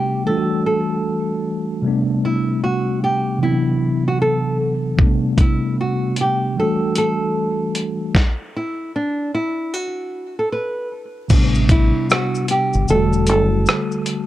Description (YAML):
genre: lo-fi hip hop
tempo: 76 BPM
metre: 4/4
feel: swing 64% on 16ths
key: A dorian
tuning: A4 = 439 Hz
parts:
  - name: nylon-string guitar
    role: melody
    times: 0.0-14.3 s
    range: D4 to B4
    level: -21 LUFS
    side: right 1 dB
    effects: none
  - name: mellow tine electric piano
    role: accompaniment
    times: 0.0-14.3 s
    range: B2 to F#4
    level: -20 LUFS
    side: equal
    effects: medium stereo tremolo
  - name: dusty soul sampler-style drum kit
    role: drums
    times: 5.0-14.3 s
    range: crash cymbal, hi-hat, kick drum, rim click, shaker, snare drum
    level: -17 LUFS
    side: equal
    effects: none
  - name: deep dub fingered electric bass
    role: bass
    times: 11.3-13.6 s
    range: E1 to A1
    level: -18 LUFS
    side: equal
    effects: none
room: light reverb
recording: cassette tape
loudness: -16 LUFS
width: side -14 dB against mid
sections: 0.0-11.3 A section; 11.3-14.3 B section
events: stop 8.1-11.3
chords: 0.3 Em11; 1.8 Am11; 3.4 D13; 5.0 Am11; 6.6 Em11; 8.1 N.C.; 11.3 Am11; 12.9 Em11